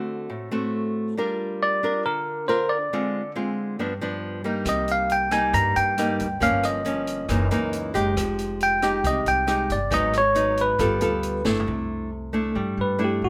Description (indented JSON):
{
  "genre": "bossa nova",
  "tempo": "137 BPM",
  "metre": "4/4",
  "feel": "straight",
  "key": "unclear",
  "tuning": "A4 = 440 Hz",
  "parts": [
    { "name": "nylon-string guitar", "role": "accompaniment", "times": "0.0-13.3 s", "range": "Gb2 to Bb4", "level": "-28 LUFS", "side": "equal", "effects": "none" },
    { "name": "bell-like tine electric piano", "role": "melody", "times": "1.6-13.3 s", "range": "F#4 to Bb5", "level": "-25 LUFS", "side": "equal", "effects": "none" },
    { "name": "upright bass", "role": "bass", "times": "4.7-13.3 s", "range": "F1 to G2", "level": "-32 LUFS", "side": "equal", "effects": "none" },
    { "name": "open jazz drum kit", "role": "drums", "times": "4.7-11.7 s", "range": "hi-hat, kick drum, rim click, snare drum, toms", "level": "-36 LUFS", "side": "equal", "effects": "none" }
  ],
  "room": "light reverb",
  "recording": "none",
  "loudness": "-24 LUFS",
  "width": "mono",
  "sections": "0.0-11.7 A section; 11.7-13.3 B section",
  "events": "drum fill 11.5; tine electric piano solo 11.7-13.3",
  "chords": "0.0 D7; 1.2 Gm7; 2.9 Dm7b5; 3.8 G7; 4.7 Cm7; 6.4 Gm7b5; 7.3 Gb13; 8.2 Fm9; 9.9 Abm7; 10.8 G9; 11.7 C69"
}